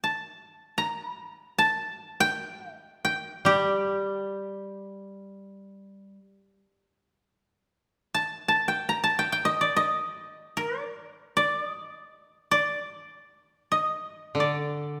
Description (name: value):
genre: japanese traditional, Japanese chamber music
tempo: free time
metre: none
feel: none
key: G hirajoshi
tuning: A4 = 441 Hz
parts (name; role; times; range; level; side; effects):
- koto; melody; 0.0-15.0 s; G4 to Bb5; -28 LUFS; equal; none
- koto; accompaniment; 3.4-6.2, 14.3-15.0 s; D3 to G3; -30 LUFS; equal; none
room: wet scoring stage reverb, RT60 1.7 s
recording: none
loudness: -27 LUFS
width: mono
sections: 0.0-7.3 A section; 7.3-15.0 A section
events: none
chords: none